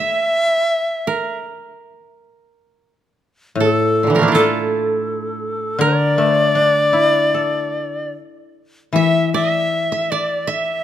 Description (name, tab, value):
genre	japanese traditional, Japanese chamber music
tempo	72-83 BPM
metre	4/4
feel	rubato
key	D hirajoshi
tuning	A4 = 440 Hz
part	breathy bright long shakuhachi	melody	0.0-10.8 s	A4 to E5	-18 LUFS	left 1 dB	none
part	koto	second line	0.0-10.8 s	Bb2 to E5	-20 LUFS	right 4 dB	none
part	koto	accompaniment	3.6-10.8 s	A2 to A4	-21 LUFS	left 4 dB	none
room	light reverb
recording	close, detailed microphones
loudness	-15 LUFS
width	side -11 dB against mid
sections	0.0-8.9 A section; 8.9-10.8 B section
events	none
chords	none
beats	0.67 1.40 2.12 | 2.85 3.58 4.30 5.04 | 5.78 6.52 7.30 8.11 | 8.93 9.71 10.49